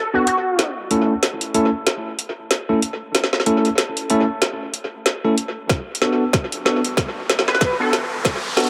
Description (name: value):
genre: glitch hop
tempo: 94 BPM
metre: 4/4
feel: swing 59% on 16ths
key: unclear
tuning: A4 = 444 Hz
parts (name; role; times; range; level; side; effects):
- sync lead; melody; 0.0-0.7, 7.5-7.9 s; F#4 to B4; -24 LUFS; equal; ensemble chorus, analog delay
- bell-like tine electric piano; stabs; 0.1-8.7 s; A3 to A4; -23 LUFS; equal; vintage 12-bit sampler grit, sidechain pumping, low-pass filter, analog delay
- drum and bass drum kit; drums; 0.3-8.7 s; hi-hat, snare drum; -23 LUFS; equal; high-pass filter on snare, high-pass filter on hats, high-pass filter on room, analog delay
- electronic kick drum; drums; 5.7-8.4 s; none; -24 LUFS; equal; none
- riser; sound effects; 6.3-8.7 s; none; -31 LUFS; equal; none
room: wet spring reverb, RT60 2.3 s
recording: echo-heavy mix, high-pass filter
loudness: -20 LUFS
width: mono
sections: 0.0-8.7 A section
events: build-up 0.0-8.7; drum fill 0.0-8.7; filter sweep on tine electric piano 0.0-8.7; riser 6.3-8.7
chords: 0.0 Bm7; 0.6 A; 5.7 Bm7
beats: | 0.59 1.23 1.87 2.51 | 3.14 3.78 4.42 5.06 | 5.70 6.34 6.97 7.61 | 8.25